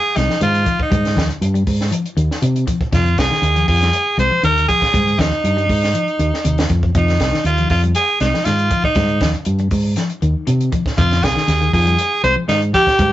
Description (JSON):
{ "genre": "afrobeat", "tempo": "119 BPM", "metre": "4/4", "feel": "straight", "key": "F minor", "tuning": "A4 = 436 Hz", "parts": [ { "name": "raspy tenor saxophone", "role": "melody", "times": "0.0-13.1 s", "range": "Eb4 to C5", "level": "-17 LUFS", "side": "right 1 dB", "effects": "none" }, { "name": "clean electric guitar", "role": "arpeggios", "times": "0.2-13.1 s", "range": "C3 to Ab3", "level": "-25 LUFS", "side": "left 3 dB", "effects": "spring reverb" }, { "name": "fingered electric bass", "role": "bass", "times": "0.2-13.1 s", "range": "C2 to C3", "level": "-17 LUFS", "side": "equal", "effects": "none" }, { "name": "compact cocktail drum kit", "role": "drums", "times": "0.2-13.1 s", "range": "hi-hat, kick drum, snare drum", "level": "-21 LUFS", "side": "equal", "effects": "none" } ], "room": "moderate studio reverb, RT60 0.5 s", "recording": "rough rehearsal-room recording, nothing above 7.8 kHz", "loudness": "-14 LUFS", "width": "side -14 dB against mid", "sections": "0.0-13.1 A section", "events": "none", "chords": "0.0 Fm7; 0.9 Abmaj7; 2.9 Fm7; 4.9 Abmaj7(no3); 6.9 Fm7; 9.0 Abmaj7; 11.0 Fm9" }